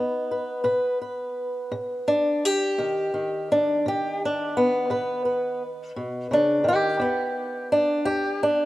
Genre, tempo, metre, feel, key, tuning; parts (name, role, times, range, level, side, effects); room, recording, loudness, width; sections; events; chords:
acoustic country blues, solo or duo; 57 BPM (dotted quarters); 12/8; straight; A4 = 441 Hz
fingerpicked swing-style acoustic guitar; solo; 0.0-8.7 s; E2 to B4; -22 LUFS; equal
moderate lush hall reverb, RT60 2.6 s; rough home demo mix; -22 LUFS; side -17 dB against mid
0.0-8.7 A section
0.0 B; 7.0 E5